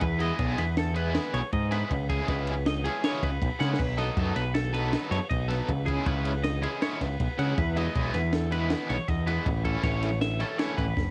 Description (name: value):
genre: math rock and midwest emo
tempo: 159 BPM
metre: 5/4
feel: straight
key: unclear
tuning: A4 = 440 Hz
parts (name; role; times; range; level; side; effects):
- twelve-string electric guitar; arpeggios; 0.0-11.1 s; G#4 to F#5; -36 LUFS; equal; cassette tape
- growling picked electric bass; bass; 0.0-11.1 s; F#1 to C#3; -31 LUFS; equal; overdrive
- compact cocktail drum kit; drums; 0.0-11.1 s; crash cymbal, kick drum, ride cymbal, snare drum; -34 LUFS; equal; cassette tape
- overdriven electric guitar; riff; 0.2-10.8 s; C#3 to A4; -35 LUFS; equal; tremolo, cassette tape
room: little or no reverb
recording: home recording on cassette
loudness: -28 LUFS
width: mono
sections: 0.0-11.1 A section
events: drum fill 3.6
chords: 0.0 Emaj7; 1.9 C#m7; 3.8 B7; 5.7 C#m7; 7.6 Emaj7; 9.5 Aadd9